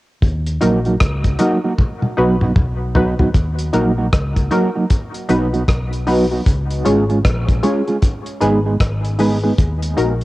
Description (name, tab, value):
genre	dub reggae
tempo	77 BPM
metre	4/4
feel	swing 62% on 16ths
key	Eb minor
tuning	A4 = 440 Hz
part	vintage muted fingered electric bass	bass	0.2-10.2 s	Ab1 to Eb2	-20 LUFS	equal	none
part	cloth-damped thuddy drum kit	drums	0.2-10.2 s	hi-hat, kick drum, rim click, toms	-17 LUFS	equal	cassette tape
part	mellow electric guitar	accompaniment	0.6-9.5 s	Gb3 to Ab4	-19 LUFS	right 2 dB	harmonic tremolo, cassette tape, dub echo
part	filtered dub chord stab	stabs	0.6-10.1 s	Eb4 to Db5	-22 LUFS	left 3 dB	chorus, cassette tape, dub echo
room	light reverb, small room ambience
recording	home recording on cassette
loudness	-14 LUFS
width	side -18 dB against mid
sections	0.2-3.3 A section; 3.3-10.2 B section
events	drum fill 1.8-3.3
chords	0.2 Ebm; 1.8 B; 3.3 Ebm; 4.9 B; 6.5 Db; 8.0 Abm; 9.6 Ebm